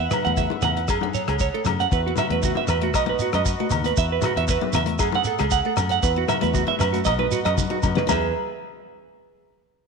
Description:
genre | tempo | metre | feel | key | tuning
highlife guitar band | 117 BPM | 4/4 | straight | E major | A4 = 439 Hz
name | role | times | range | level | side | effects
picked steel-string acoustic guitar | accompaniment | 0.0-8.2 s | E3 to E4 | -32 LUFS | left 14 dB | none
accordion | sustained chords | 0.0-8.3 s | F#4 to F#5 | -34 LUFS | left 10 dB | light tremolo tuning, stereo widening
semi-hollow electric guitar | arpeggios | 0.0-8.3 s | F#4 to F#5 | -24 LUFS | right 13 dB | spring reverb, slapback echo
fingered electric bass | bass | 0.0-8.3 s | B1 to F#2 | -26 LUFS | equal | none
cloth-damped thuddy drum kit | drums | 0.1-8.2 s | hi-hat, kick drum, rim click, snare drum, toms | -28 LUFS | left 2 dB | none
agogo bells | percussion | 0.1-8.2 s | none | -29 LUFS | left 12 dB | none
congas | percussion | 0.1-8.3 s | none | -31 LUFS | left 12 dB | none
shekere | percussion | 0.1-8.3 s | none | -30 LUFS | right 6 dB | none
room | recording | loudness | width
moderate echo chamber reverb, RT60 1.8 s, studio reverb | 1960s-style stereo with parts hard left and right | -20 LUFS | side -5 dB against mid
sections
0.0-8.1 A section; 8.1-9.9 B section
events
drum fill 7.6-8.1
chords
0.0 Esus2; 0.9 F#madd9; 1.9 Esus2; 2.9 B; 4.0 Esus2; 5.0 F#madd9; 6.0 Esus2; 7.1 B; 8.1 E

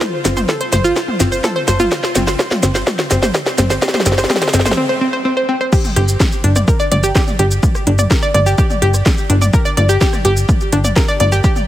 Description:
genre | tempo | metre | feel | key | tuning
melodic techno | 126 BPM | 4/4 | straight | G minor | A4 = 440 Hz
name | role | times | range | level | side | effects
electronic kick drum | drums | 0.0-11.5 s | none | -15 LUFS | equal | overdrive, high-pass filter on kick
techno drum kit | drums | 0.0-11.7 s | crash cymbal, hi-hat, rim click, shaker, snare drum, toms | -18 LUFS | equal | overdrive, sidechain pumping on hats, sidechain pumping on toms, sidechain pumping on perc, sidechain pumping on cymbals
analog pluck | arpeggios | 0.2-11.5 s | C4 to D5 | -17 LUFS | equal | chorus, sidechain pumping, dub echo
plucky analog bass | bass | 0.2-11.4 s | G1 | -15 LUFS | equal | tube saturation, sidechain pumping
room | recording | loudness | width
light reverb | heavily compressed radio sound | -12 LUFS | side -13 dB against mid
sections
0.0-5.7 A section; 5.7-11.7 B section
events
build-up 0.0-5.7; drum fill 0.0-4.8; break 4.8-5.7; drop 5.7-11.7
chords
0.0 N.C.; 5.7 G5

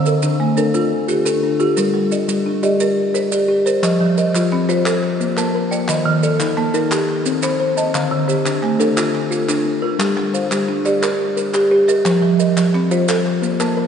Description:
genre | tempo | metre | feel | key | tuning
southern african traditional, mbira-style interlocking cycle | 117 BPM (dotted quarters) | 12/8 | straight | F mixolydian | A4 = 444 Hz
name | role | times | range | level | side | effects
folk marimba with medium hard mallets | arpeggios | 0.0-13.9 s | D3 to F5 | -20 LUFS | right 3 dB | none
kalimba | arpeggios | 0.0-13.9 s | D3 to A5 | -17 LUFS | left 2 dB | none
maracas | percussion | 0.1-13.8 s | none | -29 LUFS | right 7 dB | none
group handclap | percussion | 3.8-13.8 s | none | -27 LUFS | left 1 dB | none
room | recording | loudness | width
wet cathedral reverb, RT60 4.8 s | recorded in a church or concert hall, nothing above 10.3 kHz | -15 LUFS | side -7 dB against mid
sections
0.0-3.8 A section; 3.8-13.9 B section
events
none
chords
0.0 Dm; 1.8 Gm; 3.8 F5; 4.9 Bb; 5.9 Eb; 6.9 Cm; 7.9 Dm; 10.0 Gm; 12.1 F5; 13.1 N.C.

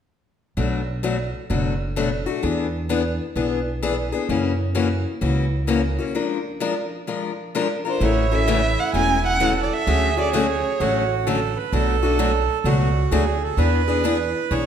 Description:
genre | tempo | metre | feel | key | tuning
acoustic string swing (jazz manouche) | 129 BPM | 4/4 | swing 66% on 8ths | A major | A4 = 438 Hz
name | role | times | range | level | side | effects
picked steel-string acoustic guitar | accompaniment | 0.6-14.7 s | B2 to Bb4 | -23 LUFS | left 5 dB | none
upright bass | bass | 0.6-14.7 s | E1 to F#2 | -23 LUFS | right 1 dB | none
warm violin | melody | 7.9-11.1 s | C5 to G#5 | -23 LUFS | right 3 dB | none
accordion | second line | 8.0-14.7 s | E4 to C#5 | -24 LUFS | right 9 dB | none
room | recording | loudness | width
wet recital hall reverb, RT60 1.5 s | none | -19 LUFS | side -8 dB against mid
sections
0.6-8.0 A section; 8.0-14.7 B section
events
break 6.2-8.0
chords
0.6 Bm7; 2.4 E7; 4.3 F#7; 6.2 Bb7; 8.0 A6; 9.9 Dmaj7; 11.7 Bm7; 13.6 E6

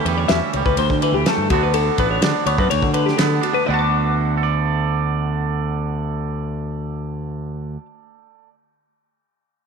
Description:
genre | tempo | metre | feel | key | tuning
math rock and midwest emo | 125 BPM | 4/4 | straight | D major | A4 = 444 Hz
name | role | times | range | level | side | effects
twangy electric guitar | accompaniment | 0.0-8.5 s | D2 to D5 | -23 LUFS | right 14 dB | none
twelve-string electric guitar | arpeggios | 0.0-7.9 s | F#4 to D6 | -21 LUFS | left 13 dB | none
growling fingered electric bass | bass | 0.0-7.8 s | A1 to D3 | -22 LUFS | equal | overdrive
loose indie drum kit | drums | 0.1-3.5 s | kick drum, ride cymbal, snare drum | -23 LUFS | equal | none
room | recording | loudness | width
light reverb, small room ambience | 1960s-style stereo with parts hard left and right | -17 LUFS | side -5 dB against mid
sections
0.0-3.7 A section; 3.7-7.5 B section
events
none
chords
0.0 A7/D (rootless); 0.8 C69/D; 1.5 D6; 2.7 G/D (rootless); 3.7 D6

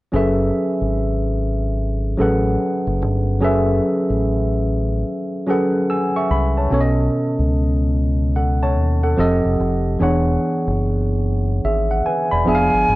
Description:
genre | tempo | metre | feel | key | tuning
R&B, neo-soul | 73 BPM | 4/4 | swing 64% on 16ths | F# minor | A4 = 442 Hz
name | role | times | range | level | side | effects
barky tine electric piano | accompaniment | 0.1-13.0 s | B2 to E6 | -19 LUFS | equal | wide subtle chorus
deep dub fingered electric bass | bass | 0.1-13.0 s | E1 to D#2 | -19 LUFS | equal | tube saturation
hollow concert flute | melody | 12.5-13.0 s | Ab5 | -16 LUFS | equal | none
room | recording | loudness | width
light reverb, small room reverb | worn, warbling old tape, cassette tape, warbly pitch drift | -16 LUFS | side -18 dB against mid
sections
0.1-13.0 A section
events
none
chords
0.1 F#m11; 6.7 B7; 9.2 F9; 10.0 E13; 12.5 Fdim7

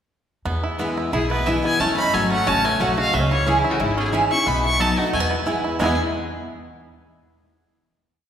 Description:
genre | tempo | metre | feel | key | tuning
bluegrass | 180 BPM | 4/4 | swing 53% on 8ths | E major | A4 = 439 Hz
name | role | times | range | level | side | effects
picked steel-string acoustic guitar | accompaniment | 0.5-5.9 s | E2 to F#4 | -25 LUFS | left 2 dB | none
bluegrass banjo | arpeggios | 0.5-6.0 s | G#3 to A4 | -25 LUFS | right 3 dB | none
upright bass | bass | 0.5-6.0 s | G#1 to F#2 | -26 LUFS | equal | none
mandolin | stabs | 0.8-5.9 s | A3 to B5 | -27 LUFS | right 3 dB | none
clear fiddle | melody | 1.1-6.0 s | E4 to C#6 | -23 LUFS | equal | none
lap resonator guitar | second line | 1.1-6.0 s | G#2 to E4 | -29 LUFS | left 2 dB | none
room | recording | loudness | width
wet concert hall reverb, RT60 1.9 s | recorded in a church or concert hall | -18 LUFS | side -9 dB against mid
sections
0.5-5.8 A section; 5.8-7.1 final chord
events
none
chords
0.5 E; 1.8 F#m; 3.1 C#m; 4.5 B; 5.1 E

